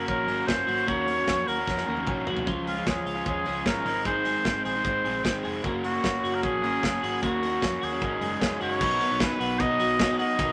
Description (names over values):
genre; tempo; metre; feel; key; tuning
jangly indie pop; 151 BPM; 4/4; straight; unclear; A4 = 440 Hz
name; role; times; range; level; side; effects
clear trumpet; melody; 0.0-10.5 s; F4 to Eb5; -30 LUFS; equal; none
crunchy overdriven guitar; accompaniment; 0.0-10.5 s; Ab2 to Gb4; -35 LUFS; equal; none
twelve-string electric guitar; arpeggios; 0.0-10.5 s; Eb3 to Ab4; -33 LUFS; equal; none
vintage muted fingered electric bass; bass; 0.0-10.5 s; F1 to Cb3; -43 LUFS; equal; none
modern studio drum kit; drums; 0.1-10.5 s; crash cymbal, hi-hat, kick drum, ride cymbal, snare drum, toms; -33 LUFS; equal; none
room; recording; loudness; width
wet studio reverb, RT60 0.9 s; none; -26 LUFS; mono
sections
0.0-8.8 A section; 8.8-10.5 B section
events
drum fill 1.7-2.5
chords
0.0 Gb; 0.9 Ebm7; 2.5 Db; 3.9 Ab; 5.6 Gb; 7.2 Ebm7; 8.0 Ab7sus4; 8.8 Cb